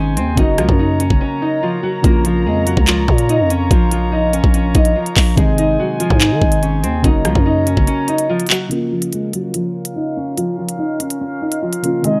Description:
hip hop, drill; 144 BPM; 4/4; half-time; Bb minor; A4 = 441 Hz
nylon-string guitar; melody; 0.0-12.2 s; F3 to Eb5; -21 LUFS; equal; low-pass filter, tape echo
dark concert grand piano; accompaniment; 0.0-12.2 s; C3 to Gb4; -26 LUFS; equal; low-pass filter
dark brass ensemble; sustained chords; 0.0-12.2 s; C4 to Bb5; -28 LUFS; equal; low-pass filter
growling 808-style bass; bass; 0.0-7.9 s; Gb1 to Eb3; -19 LUFS; equal
drill drum kit; drums; 0.2-12.1 s; handclaps, hi-hat, kick drum, rim click; -18 LUFS; equal
small room ambience; dry, gritty hardware recording; -16 LUFS; mono
0.0-8.7 A section; 8.7-12.2 B section
break 1.2-2.0, 7.9-8.7; filter sweep 8.7-12.2
0.4 Gb; 2.0 Bbm; 5.4 Ab; 7.0 Gb; 8.7 Bbm
| 0.38 0.79 1.21 1.62 | 2.04 2.46 2.88 3.29 | 3.71 4.12 4.54 4.96 | 5.38 5.79 6.21 6.62 | 7.04 7.46 7.88 8.29 | 8.71 9.12 9.54 9.96 | 10.38 10.79 11.21 11.62 | 12.04

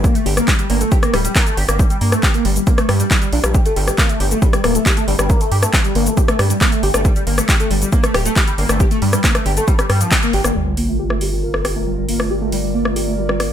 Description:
driving peak-time techno; 137 BPM; 4/4; straight; G minor; A4 = 440 Hz
overdriven synth lead; riff; 0.0-13.5 s; F3 to G4; -20 LUFS; left 1 dB; ensemble chorus, sidechain pumping, ping-pong delay
gritty driven synth bass; bass; 0.0-13.5 s; D1 to G2; -19 LUFS; equal; sidechain pumping
electronic kick drum; drums; 0.0-10.2 s; -16 LUFS; equal; studio reverb
techno drum kit; drums; 0.0-13.5 s; handclaps, hi-hat, rim click, shaker; -20 LUFS; left 1 dB; sidechain pumping on hats, studio reverb, sidechain pumping on perc, sidechain pumping on cymbals
sub drop; sound effects; 10.6-12.3 s; -26 LUFS; equal
airy breathy pad; texture; 10.6-13.5 s; F4 to D5; -25 LUFS; right 3 dB; chorus, sidechain pumping
little or no reverb; -14 LUFS; side -10 dB against mid
0.0-10.6 A section; 10.6-13.5 B section
drop 0.0-10.6; band accent 10.1; impact 10.6-12.3; filter sweep on analog synth lead 10.6-13.5
0.0 Gm
| 0.04 0.48 0.92 1.36 | 1.79 2.23 2.67 3.11 | 3.54 3.98 4.42 4.86 | 5.30 5.74 6.17 6.61 | 7.05 7.49 7.92 8.36 | 8.80 9.24 9.68 10.12 | 10.55 10.99 11.43 11.87 | 12.30 12.74 13.18

